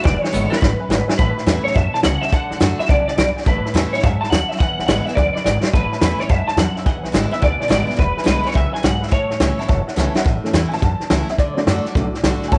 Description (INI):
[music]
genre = rockabilly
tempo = 212 BPM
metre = 4/4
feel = swing 65% on 8ths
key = A major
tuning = A4 = 440 Hz
[part]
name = electric guitar through a small old amp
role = melody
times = 0.0-9.9 s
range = B4 to A5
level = -24 LUFS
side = equal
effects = ensemble chorus, tape echo
[part]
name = honky-tonk upright piano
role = accompaniment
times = 0.0-12.6 s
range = E3 to B5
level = -30 LUFS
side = equal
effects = none
[part]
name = picked steel-string acoustic guitar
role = accompaniment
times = 0.0-12.6 s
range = E2 to F#4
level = -28 LUFS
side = equal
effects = none
[part]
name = upright bass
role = bass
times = 0.1-12.6 s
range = E1 to A2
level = -24 LUFS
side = equal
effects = none
[part]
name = vintage drum kit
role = drums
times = 0.1-12.6 s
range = hi-hat, kick drum, snare drum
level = -21 LUFS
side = equal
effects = none
[sound]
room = small room reverb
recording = nothing above 11.0 kHz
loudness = -18 LUFS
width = mono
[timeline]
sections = 0.0-1.2 A section; 1.2-10.3 B section; 10.3-12.6 C section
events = drum fill 0.1-1.2, 5.4, 10.0; honky-tonk piano solo 10.3-12.6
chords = 0.1 E7; 1.2 A; 2.3 D; 3.5 A; 4.6 E7; 5.7 A; 6.9 E7; 9.1 A; 11.4 D